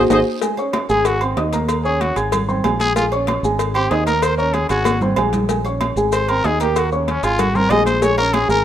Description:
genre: latin, salsa.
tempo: 190 BPM.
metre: 4/4.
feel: straight.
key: unclear.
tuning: A4 = 440 Hz.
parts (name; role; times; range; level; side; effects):
dark grand piano; accompaniment; 0.0-8.6 s; Ab3 to Ab6; -20 LUFS; right 1 dB; none.
fingered electric bass; bass; 0.0-8.6 s; Ab1 to Eb2; -23 LUFS; equal; none.
congas; percussion; 0.1-8.5 s; none; -24 LUFS; left 2 dB; none.
cowbell; percussion; 0.1-8.5 s; none; -27 LUFS; left 10 dB; none.
maracas; percussion; 0.1-8.6 s; none; -37 LUFS; left 6 dB; none.
timbales and agogo bells; percussion; 0.1-8.5 s; none; -26 LUFS; right 6 dB; none.
growling trumpet; melody; 0.9-8.6 s; Bb3 to Eb5; -21 LUFS; left 1 dB; none.
room: light reverb, small room ambience.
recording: rough home demo mix.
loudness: -15 LUFS.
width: side -10 dB against mid.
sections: 0.4-8.6 A section.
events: drum fill 0.0-0.4, 4.9-5.5; band accent 0.0-0.4; trumpet solo 0.4-8.6.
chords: 0.4 Absus4; 1.1 Ab; 1.7 Eb5; 2.3 Ab; 3.0 Bbm7; 3.6 Ab; 4.2 Eb5; 4.9 Ab; 5.5 Bbm7; 6.1 Ab; 6.8 Eb5; 7.4 Ab; 8.0 Bbm7.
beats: 0.10 | 0.42 0.74 1.05 1.37 | 1.69 2.00 2.32 2.64 | 2.96 3.27 3.59 3.91 | 4.22 4.54 4.86 5.17 | 5.49 5.81 6.12 6.44 | 6.75 7.07 7.39 7.70 | 8.02 8.34.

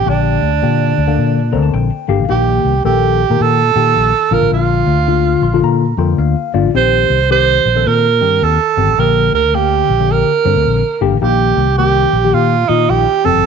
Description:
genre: uptempo 1960s-style soul.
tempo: 108 BPM.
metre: 4/4.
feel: swing 63% on 8ths.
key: unclear.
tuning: A4 = 440 Hz.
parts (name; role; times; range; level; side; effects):
breathy tenor saxophone; melody; 0.0-13.5 s; D4 to C5; -14 LUFS; right 9 dB; none.
fingered electric bass; bass; 0.0-13.4 s; F1 to Bb2; -16 LUFS; left 1 dB; none.
tine electric piano; accompaniment; 0.1-13.5 s; D3 to C6; -17 LUFS; left 10 dB; phaser.
room: moderate echo chamber reverb, RT60 1.4 s, small room ambience.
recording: 1960s-style stereo with parts hard left and right, nothing above 7.7 kHz.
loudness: -11 LUFS.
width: side -6 dB against mid.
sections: 0.0-13.5 A section.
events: tine electric piano fill 1.2-2.3, 5.1-6.8.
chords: 0.1 Gm/Bb; 2.3 Eb/Bb; 4.2 Bb; 6.8 Cm/Bb; 9.0 Gm/Bb; 11.2 Eb/Bb.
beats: | 0.07 0.62 1.18 1.74 | 2.30 2.85 3.41 3.97 | 4.52 5.08 5.64 6.19 | 6.75 7.31 7.86 8.42 | 8.98 9.54 10.10 10.66 | 11.22 11.78 12.34 12.90.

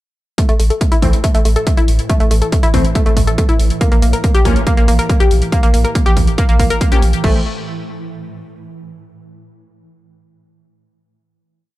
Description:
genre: driving peak-time techno.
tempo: 140 BPM.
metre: 4/4.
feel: straight.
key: unclear.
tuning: A4 = 439 Hz.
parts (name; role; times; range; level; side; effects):
analog pluck; riff; 0.4-7.4 s; A3 to Bb4; -19 LUFS; left 1 dB; chorus, sidechain pumping, ping-pong delay.
swarming drone; drone; 1.6-7.3 s; A2 to E3; -25 LUFS; right 3 dB; built-in reverb, sidechain pumping.
electronic kick drum; drums; 0.4-7.3 s; none; -14 LUFS; equal; overdrive.
techno drum kit; drums; 0.4-7.3 s; crash cymbal, hi-hat; -28 LUFS; left 1 dB; overdrive, sidechain pumping on hats, sidechain pumping on cymbals.
warm sub bass; bass; 0.5-7.4 s; A1 to Bb1; -15 LUFS; equal; overdrive, sidechain pumping, low-pass filter.
rave stab; stabs; 1.0-7.4 s; E3 to Db4; -23 LUFS; left 1 dB; chorus, built-in reverb, sidechain pumping, ping-pong delay.
room: little or no reverb.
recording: dark, warm production.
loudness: -11 LUFS.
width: side -16 dB against mid.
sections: 0.4-7.2 groove; 7.2-9.0 final chord.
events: filter sweep on synth arpeggio sound 0.4-7.2.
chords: 0.4 Am; 3.8 Bbm; 7.2 Am.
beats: | 0.38 0.81 1.24 1.67 | 2.10 2.52 2.95 3.38 | 3.81 4.24 4.67 5.10 | 5.52 5.95 6.38 6.81 | 7.24.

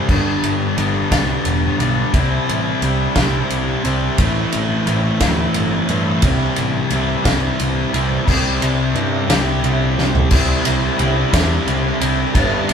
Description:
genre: quiet-loud alternative rock.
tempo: 59 BPM (dotted quarters).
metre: 6/8.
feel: straight.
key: unclear.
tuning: A4 = 440 Hz.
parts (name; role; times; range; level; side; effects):
cranked stack guitar; riff; 0.0-12.7 s; G2 to G4; -20 LUFS; left 6 dB; overdrive.
thick fuzz guitar; riff; 0.0-12.7 s; G2 to E4; -21 LUFS; right 5 dB; distortion.
growling picked electric bass; bass; 0.1-12.7 s; E1 to G2; -21 LUFS; equal; overdrive.
loose indie drum kit; drums; 0.1-12.7 s; crash cymbal, kick drum, ride cymbal, snare drum, toms; -20 LUFS; equal; none.
room: moderate studio reverb, RT60 0.5 s.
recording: band playing live in one room.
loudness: -15 LUFS.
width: side -7 dB against mid.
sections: 0.0-8.3 A section; 8.3-10.3 B section; 10.3-12.7 C section.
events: drum fill 10.0-10.3.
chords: 0.1 G; 2.1 C; 4.2 Am; 6.2 C.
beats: | 0.09 1.12 | 2.14 3.17 | 4.19 5.21 | 6.24 7.26 | 8.28 9.30 | 10.32 11.33 | 12.35.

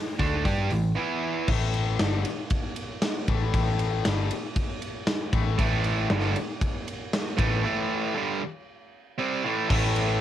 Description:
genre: hard rock.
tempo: 117 BPM.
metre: 4/4.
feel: straight.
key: A minor.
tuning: A4 = 440 Hz.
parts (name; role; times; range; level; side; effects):
big rock drum kit; drums; 0.1-10.1 s; crash cymbal, hi-hat, kick drum, ride cymbal, snare drum; -28 LUFS; equal; cassette tape.
distorted electric guitar; riff; 0.2-1.5, 5.6-10.2 s; G2 to G4; -27 LUFS; right 7 dB; overdrive, cassette tape.
tight distorted guitar; riff; 0.2-10.2 s; G2 to G4; -31 LUFS; left 10 dB; distortion, cassette tape.
hollow-body short-scale picked electric bass; bass; 0.2-10.2 s; G1 to G2; -26 LUFS; equal; none.
room: little or no reverb.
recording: home recording on cassette.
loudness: -24 LUFS.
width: side -11 dB against mid.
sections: 0.0-1.5 A section; 1.5-9.7 B section.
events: break 1.0-1.5, 7.7-9.7.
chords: 0.0 A5; 1.0 E5; 1.5 Am.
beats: 0.45 0.97 | 1.48 2.00 2.51 3.02 | 3.54 4.05 4.56 5.08 | 5.59 6.11 6.62 7.13 | 7.65 8.17 8.68 9.20 | 9.71.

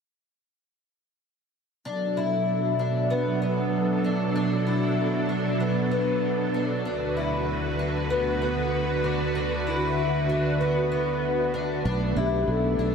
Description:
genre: dream pop.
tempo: 96 BPM.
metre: 4/4.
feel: straight.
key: unclear.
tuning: A4 = 440 Hz.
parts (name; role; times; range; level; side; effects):
string machine, violas; sustained chords; 1.9-12.9 s; D2 to B4; -25 LUFS; right 2 dB; ensemble chorus.
fingerpicked twelve-string acoustic guitar; arpeggios; 1.9-12.9 s; B3 to E4; -28 LUFS; left 3 dB; lush chorus, analog delay.
fingered electric bass; bass; 11.9-12.9 s; B1; -26 LUFS; equal; none.
hollow clarinet-like synth lead; melody; 12.2-12.9 s; G4 to A4; -29 LUFS; equal; chorus, analog delay.
room: wet huge ambient reverb, RT60 7.8 s.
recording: dreamy mix soaked in reverb.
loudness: -23 LUFS.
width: side -6 dB against mid.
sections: 1.9-11.9 A section; 11.9-12.9 B section.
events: none.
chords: 1.9 Bm7; 6.9 D6; 11.9 Bm7.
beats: | 1.85 2.48 3.10 3.73 | 4.36 4.98 5.61 6.23 | 6.86 7.48 8.11 8.73 | 9.36 9.98 10.61 11.23 | 11.86 12.48.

